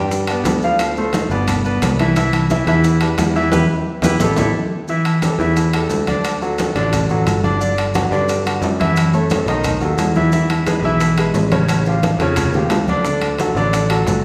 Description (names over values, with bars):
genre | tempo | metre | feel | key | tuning
latin, salsa | 176 BPM | 4/4 | straight | unclear | A4 = 435 Hz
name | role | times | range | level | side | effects
clear baby grand piano | accompaniment | 0.0-14.2 s | C#3 to G5 | -20 LUFS | equal | none
picked electric bass | bass | 0.0-14.2 s | F#1 to G2 | -22 LUFS | equal | none
bongos | percussion | 0.1-4.5, 10.3-14.2 s | none | -30 LUFS | equal | none
congas | percussion | 0.1-14.2 s | none | -26 LUFS | equal | none
maracas | percussion | 0.1-14.2 s | none | -36 LUFS | equal | none
timbales | percussion | 0.3-14.2 s | none | -27 LUFS | equal | none
room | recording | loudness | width
wet recital hall reverb, RT60 1.8 s | recorded in a church or concert hall | -17 LUFS | mono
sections
0.0-4.9 A section; 4.9-14.2 B section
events
band accent 3.5-4.9; drum fill 3.9-4.9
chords
0.0 Em7 (rootless); 0.8 Dm7; 1.5 G6; 2.2 Cmaj7; 3.5 Em; 4.2 A5; 4.9 A7sus4; 6.2 D; 7.6 G5; 9.0 F#m7; 9.6 B7; 10.3 E; 11.7 Aaug7; 13.1 D